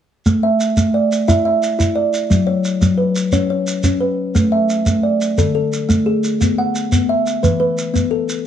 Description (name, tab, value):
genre	southern african traditional, mbira-style interlocking cycle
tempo	117 BPM (dotted quarters)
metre	12/8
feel	straight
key	A major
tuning	A4 = 440 Hz
part	kalimba	arpeggios	0.3-8.5 s	D3 to F#5	-15 LUFS	equal	none
part	shekere	percussion	0.3-8.5 s	none	-19 LUFS	right 2 dB	none
room	moderate studio reverb, RT60 0.7 s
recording	dark, warm production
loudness	-14 LUFS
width	side -9 dB against mid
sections	0.3-8.5 A section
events	none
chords	0.3 A5; 2.3 F#5; 4.4 A5; 5.4 D5; 6.4 B5; 7.4 E5